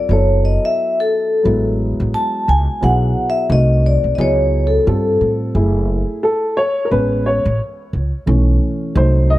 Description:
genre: hip hop, jazz-hop.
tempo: 88 BPM.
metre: 4/4.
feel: swing 59% on 16ths.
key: F# dorian.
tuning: A4 = 440 Hz.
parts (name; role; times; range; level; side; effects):
vibraphone with soft mallets; melody; 0.0-5.3 s; A4 to A5; -17 LUFS; left 1 dB; none.
dark upright piano; accompaniment; 0.0-9.4 s; E3 to Eb5; -19 LUFS; equal; none.
upright bass; bass; 0.1-9.4 s; F#1 to A2; -16 LUFS; equal; none.
room: studio ambience.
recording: none.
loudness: -14 LUFS.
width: side -16 dB against mid.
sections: 0.0-5.5 A section; 5.5-9.4 A section.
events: vibraphone solo 0.0-5.5; upright piano solo 5.5-9.4.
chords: 0.1 F#m7; 1.5 Amaj9; 2.8 Bsus4; 3.5 Cdim7; 4.2 C#m7; 4.9 Gsus2; 5.5 F#m9; 6.9 Amaj9; 8.3 B7sus4.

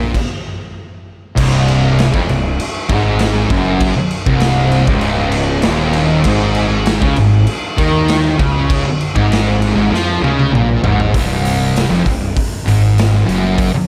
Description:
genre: stoner and doom metal.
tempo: 98 BPM.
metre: 4/4.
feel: straight.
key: C phrygian.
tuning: A4 = 439 Hz.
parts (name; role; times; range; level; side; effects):
thick fuzz guitar; riff; 0.0-13.8 s; C2 to F3; -20 LUFS; equal; distortion.
thick fuzz guitar; riff; 0.0-13.8 s; C2 to F3; -20 LUFS; equal; distortion.
fuzz fingered electric bass; bass; 0.0-13.8 s; C1 to F2; -22 LUFS; equal; overdrive.
raw garage drum kit; drums; 0.1-13.7 s; crash cymbal, hi-hat, kick drum, snare drum, toms; -20 LUFS; equal; none.
distorted electric guitar; riff; 1.4-11.1 s; C2 to F3; -21 LUFS; equal; distortion.
room: light reverb.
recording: none.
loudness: -14 LUFS.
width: mono.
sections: 0.0-1.4 A section; 1.4-11.1 B section; 11.1-13.9 C section.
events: stop 0.1-1.4; drum fill 9.9-11.1.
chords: 0.0 N.C.; 1.4 Cm; 6.3 Ab5; 11.1 N.C..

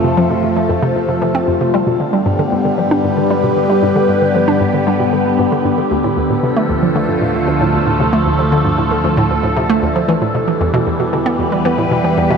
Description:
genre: ambient, sequencer-driven space music.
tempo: 115 BPM.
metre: 4/4.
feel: straight.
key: D dorian.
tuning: A4 = 440 Hz.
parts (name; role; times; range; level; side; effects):
phased analog pad; sustained chords; 0.0-12.4 s; C3 to B4; -15 LUFS; equal; phaser, chorus, shimmer reverb.
hollow square pluck; riff; 0.0-12.3 s; D2 to D4; -17 LUFS; equal; chorus, analog delay, shimmer reverb.
analog drone; bass; 0.0-12.4 s; D2 to G2; -24 LUFS; left 1 dB; chorus.
room: wet huge ambient reverb, RT60 8.0 s.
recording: none.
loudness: -12 LUFS.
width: side -6 dB against mid.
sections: 0.0-12.4 A section.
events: none.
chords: 0.0 F; 1.7 G; 5.9 Dm; 10.1 Em.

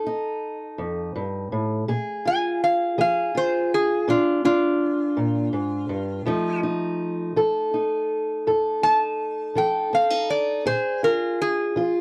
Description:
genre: acoustic country blues, solo or duo.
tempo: 55 BPM (dotted quarters).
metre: 12/8.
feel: straight.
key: F mixolydian.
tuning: A4 = 437 Hz.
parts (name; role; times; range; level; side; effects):
fingerpicked steel-string acoustic guitar; accompaniment; 0.0-12.0 s; F2 to A4; -26 LUFS; equal; none.
metal-body resonator slide guitar; melody; 2.3-12.0 s; F4 to A5; -24 LUFS; equal; none.
room: little or no reverb.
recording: dry, close 1970s-style studio recording.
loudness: -23 LUFS.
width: mono.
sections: 0.0-12.0 A section.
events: resonator guitar played with a steel bar solo 0.0-12.0.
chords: 0.0 F7; 1.9 Bb7; 6.3 F7; 10.7 Bb7(no3).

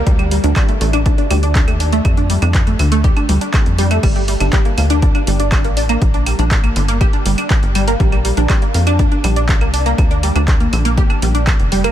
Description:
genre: melodic techno.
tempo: 121 BPM.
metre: 4/4.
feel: straight.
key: G minor.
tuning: A4 = 440 Hz.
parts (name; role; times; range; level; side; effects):
tight sequencer bass; bass; 0.0-11.9 s; F1 to F2; -16 LUFS; equal; sidechain pumping.
wide unison pluck; arpeggios; 0.1-11.9 s; D3 to G4; -18 LUFS; right 1 dB; flanger, sidechain pumping, analog delay.
electronic kick drum; drums; 0.1-11.6 s; none; -15 LUFS; equal; none.
punchy analog drum machine; drums; 0.1-11.9 s; claves, crash cymbal, handclaps, hi-hat; -23 LUFS; right 1 dB; sidechain pumping on hats, sidechain pumping on perc, sidechain pumping on cymbals.
room: light reverb.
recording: none.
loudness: -12 LUFS.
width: side -11 dB against mid.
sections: 0.0-11.9 A section.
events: none.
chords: 0.1 Dm; 4.0 Gm; 8.0 Bb.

